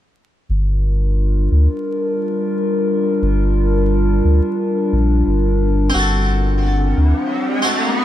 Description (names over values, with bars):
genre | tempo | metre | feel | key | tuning
trip hop | 88 BPM | 4/4 | swing 54% on 16ths | G minor | A4 = 441 Hz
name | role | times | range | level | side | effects
warbly tape-like pad | sustained chords | 0.9-8.0 s | G3 to F#5 | -19 LUFS | left 1 dB | chorus, built-in reverb
warm sub bass | bass | 0.5-7.1 s | G1 to D2 | -15 LUFS | equal | none
harpsichord | accompaniment | 5.9-8.0 s | C4 to A4 | -21 LUFS | equal | harmonic tremolo, tape echo
riser | sound effects | 6.6-8.0 s | none | -23 LUFS | left 1 dB | none
room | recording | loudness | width
light reverb, digital ambience | vinyl crackle | -15 LUFS | side -12 dB against mid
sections
0.5-8.0 A section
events
riser 6.6-8.0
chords
0.5 Gm7; 5.9 D7/G